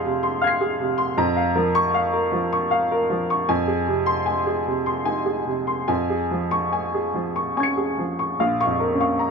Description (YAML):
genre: neoclassical minimalist piano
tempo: 70-79 BPM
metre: 3/4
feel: rubato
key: unclear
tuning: A4 = 440 Hz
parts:
  - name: warm upright piano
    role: solo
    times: 0.0-9.3 s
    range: Bb1 to Db7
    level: -20 LUFS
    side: equal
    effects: none
room: moderate booth ambience, RT60 0.2 s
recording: none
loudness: -20 LUFS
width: side -5 dB against mid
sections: 0.0-8.4 A section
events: none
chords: 0.0 Fm; 1.2 Bbm/F; 3.5 Ab/F; 5.9 Db/F; 8.4 Bbm